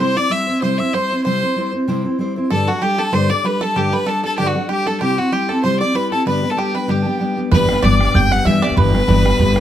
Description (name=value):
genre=celtic folk, Celtic reel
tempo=191 BPM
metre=4/4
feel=swing 54% on 8ths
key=G major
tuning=A4 = 440 Hz
part: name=clear fiddle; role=melody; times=0.0-9.6 s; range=F#4 to G5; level=-20 LUFS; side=equal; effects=none
part: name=bluegrass banjo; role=second line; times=0.0-9.6 s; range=F#4 to G5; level=-27 LUFS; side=right 5 dB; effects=none
part: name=mellow hollow wooden whistle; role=second line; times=0.0-9.6 s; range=F#5 to G6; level=-27 LUFS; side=left 4 dB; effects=none
part: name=fingerpicked steel-string acoustic guitar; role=accompaniment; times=0.0-9.6 s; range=G2 to C5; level=-18 LUFS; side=left 1 dB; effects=none
part: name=upright bass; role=bass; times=7.5-9.6 s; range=G1 to G2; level=-18 LUFS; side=equal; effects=none
part: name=bodhran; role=percussion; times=7.5-9.6 s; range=none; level=-19 LUFS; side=right 2 dB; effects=none
room=little or no reverb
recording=close, detailed microphones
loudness=-15 LUFS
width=side -11 dB against mid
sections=0.0-7.5 A section; 7.5-9.6 B section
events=none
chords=0.0 C; 2.5 Gsus2; 5.0 C; 6.3 G; 7.5 G6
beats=0.31 0.62 0.93 | 1.25 1.56 1.87 2.19 | 2.50 2.81 3.13 3.44 | 3.76 4.07 4.38 4.70 | 5.01 5.33 5.64 5.95 | 6.27 6.58 6.89 7.21 | 7.52 7.83 8.14 8.45 | 8.77 9.08 9.39